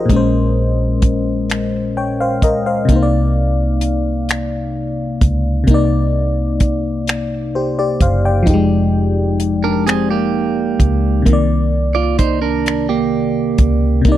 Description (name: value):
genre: slow six-eight R&B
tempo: 43 BPM (dotted quarters)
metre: 6/8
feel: straight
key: C minor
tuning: A4 = 440 Hz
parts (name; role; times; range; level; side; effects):
- FM electric piano; accompaniment; 0.0-14.2 s; Bb2 to G5; -17 LUFS; left 2 dB; chorus
- vintage muted fingered electric bass; bass; 0.0-14.2 s; F1 to Db2; -18 LUFS; right 1 dB; none
- damped 70s drum kit; drums; 0.1-14.2 s; finger snaps, hi-hat, kick drum; -15 LUFS; equal; none
- clean electric guitar; second line; 9.6-14.0 s; Bb3 to D5; -18 LUFS; right 10 dB; slapback echo
- warm analog pad; sustained chords; 14.1-14.2 s; Bb3 to G4; -25 LUFS; right 4 dB; none
room: little or no reverb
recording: dry, close 1970s-style studio recording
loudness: -14 LUFS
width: side -12 dB against mid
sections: 0.0-14.1 A section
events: none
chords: 0.1 Bbm9; 2.9 Cm9; 8.5 Fm9; 11.3 Cm9